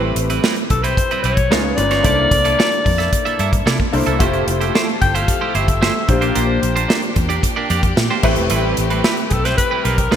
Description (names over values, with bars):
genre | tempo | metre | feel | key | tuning
polished 1980s jazz-funk pop | 111 BPM | 4/4 | straight | A phrygian | A4 = 440 Hz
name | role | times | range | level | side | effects
clear concert grand piano | accompaniment | 0.0-10.2 s | G#3 to C5 | -22 LUFS | left 2 dB | ensemble chorus
clean electric guitar | riff | 0.0-10.2 s | G3 to E5 | -22 LUFS | right 6 dB | analog chorus
vintage muted fingered electric bass | bass | 0.0-10.2 s | E1 to C3 | -21 LUFS | equal | none
modern studio drum kit | drums | 0.2-10.2 s | crash cymbal, hi-hat, kick drum, snare drum | -19 LUFS | equal | gated reverb
breathy alto saxophone | melody | 0.7-10.2 s | G#4 to G5 | -20 LUFS | left 3 dB | none
warm studio string section | sustained chords | 4.2-10.2 s | C#3 to A4 | -28 LUFS | left 2 dB | none
room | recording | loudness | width
moderate lush hall reverb, RT60 2.0 s | bright 1980s-style digital production | -14 LUFS | side -9 dB against mid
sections
0.0-10.2 A section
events
none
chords
0.0 Am9; 1.5 C#9; 2.0 C13; 4.2 Fmaj9; 6.1 Bb69; 8.2 Am9